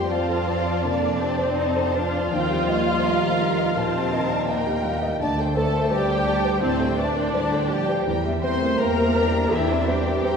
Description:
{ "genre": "cinematic, emotional film score for orchestra", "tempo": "83 BPM", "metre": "4/4", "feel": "rubato", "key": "unclear", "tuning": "A4 = 440 Hz", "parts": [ { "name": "warm studio violin section", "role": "melody", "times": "0.0-10.4 s", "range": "Bb4 to C6", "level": "-32 LUFS", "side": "left 3 dB", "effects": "none" }, { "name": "warm symphonic violin section", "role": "second line", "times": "0.0-10.4 s", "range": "Bb4 to C6", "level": "-28 LUFS", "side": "left 1 dB", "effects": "none" }, { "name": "felt-muted upright piano", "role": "accompaniment", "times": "0.0-10.4 s", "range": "D2 to F5", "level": "-27 LUFS", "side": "left 2 dB", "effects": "none" }, { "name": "warm studio viola section", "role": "accompaniment", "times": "0.0-10.4 s", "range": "Bb3 to C5", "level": "-26 LUFS", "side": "right 2 dB", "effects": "none" }, { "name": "dark French horn section", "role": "sustained chords", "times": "0.0-10.4 s", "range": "Bb2 to C4", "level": "-29 LUFS", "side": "left 1 dB", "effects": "none" }, { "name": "concert harp", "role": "arpeggios", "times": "0.0-10.4 s", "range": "D3 to F6", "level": "-32 LUFS", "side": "left 4 dB", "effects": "none" }, { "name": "warm studio double bass section", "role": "bass", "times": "0.0-10.4 s", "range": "D2 to F2", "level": "-29 LUFS", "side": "right 2 dB", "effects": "none" }, { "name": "warm symphonic cello section", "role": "bass", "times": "0.0-10.4 s", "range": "F3 to Eb4", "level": "-30 LUFS", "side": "right 2 dB", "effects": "none" } ], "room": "wet scoring stage reverb, RT60 1.9 s", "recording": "heard from further back in the room", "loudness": "-20 LUFS", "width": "side -6 dB against mid", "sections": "0.0-10.4 A section", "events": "none", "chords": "0.0 F6; 2.3 Ebadd9; 5.2 D7sus4; 8.1 C7/E" }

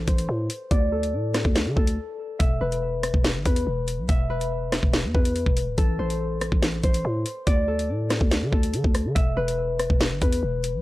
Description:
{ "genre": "hip hop, drill", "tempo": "142 BPM", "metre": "4/4", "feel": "half-time", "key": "unclear", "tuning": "A4 = 439 Hz", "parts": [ { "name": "concert harp", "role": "melody", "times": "0.0-10.8 s", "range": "A4 to E5", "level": "-29 LUFS", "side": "left 2 dB", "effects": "low-pass filter, tape echo" }, { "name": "growling 808-style bass", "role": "bass", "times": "0.0-10.8 s", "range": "D1 to D3", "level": "-26 LUFS", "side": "equal", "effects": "none" }, { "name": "drill drum kit", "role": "drums", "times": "0.1-10.7 s", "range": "hi-hat, kick drum, rim click, snare drum", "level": "-22 LUFS", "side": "equal", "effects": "none" } ], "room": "little or no reverb", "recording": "dry, gritty hardware recording, cassette tape", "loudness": "-21 LUFS", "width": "side -17 dB against mid", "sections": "0.0-10.8 A section", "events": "filter sweep on harp 0.0-2.4; break 2.0-2.4", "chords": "0.0 Am; 0.7 D5; 2.4 E5; 5.8 Am; 7.5 D5; 9.2 E5" }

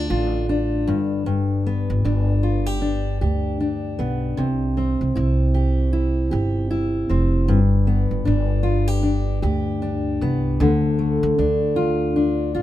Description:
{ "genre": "acoustic pop", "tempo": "77 BPM", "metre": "4/4", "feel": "swing 60% on 16ths", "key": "unclear", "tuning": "A4 = 442 Hz", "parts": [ { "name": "fingerpicked steel-string acoustic guitar", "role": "accompaniment", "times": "0.0-12.6 s", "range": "G2 to G4", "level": "-21 LUFS", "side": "left 2 dB", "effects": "none" }, { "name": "upright bass", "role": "bass", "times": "0.0-12.6 s", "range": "F1 to D2", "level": "-22 LUFS", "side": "right 1 dB", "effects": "none" } ], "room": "little or no reverb", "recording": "minimal, uncompressed stereo recording", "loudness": "-18 LUFS", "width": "side -14 dB against mid", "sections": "0.0-12.6 A section", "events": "none", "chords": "0.0 Dm; 0.9 G; 4.4 C; 7.5 G; 10.6 Dm" }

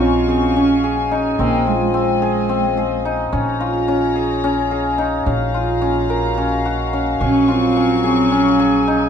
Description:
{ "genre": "contemporary instrumental, contemporary", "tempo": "217 BPM (eighths)", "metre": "7/8", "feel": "straight", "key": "unclear", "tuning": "A4 = 442 Hz", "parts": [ { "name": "dark cello", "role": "melody", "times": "0.0-3.0, 7.2-8.9 s", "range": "Ab3 to Db4", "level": "-18 LUFS", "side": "right 3 dB", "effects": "none" }, { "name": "dark symphonic string section", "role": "sustained chords", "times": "0.0-9.1 s", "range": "F4 to Db6", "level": "-27 LUFS", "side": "left 3 dB", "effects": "none" }, { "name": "cimbalom", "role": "arpeggios", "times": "0.0-9.1 s", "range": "C4 to Bb4", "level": "-18 LUFS", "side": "left 2 dB", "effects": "none" }, { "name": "upright bass", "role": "bass", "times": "0.0-9.1 s", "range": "Bb1", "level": "-24 LUFS", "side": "right 1 dB", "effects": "none" }, { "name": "warm clarinet", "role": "second line", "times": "7.2-9.1 s", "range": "Gb3", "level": "-22 LUFS", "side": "left 7 dB", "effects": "none" } ], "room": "wet small room reverb, RT60 0.5 s", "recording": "dark, warm production", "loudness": "-15 LUFS", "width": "side -7 dB against mid", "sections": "0.0-9.1 A section", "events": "none", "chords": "0.0 Ebm11/Bb; 1.4 Fm7/Bb; 3.3 Bbm7; 5.3 Gbmaj7/Bb" }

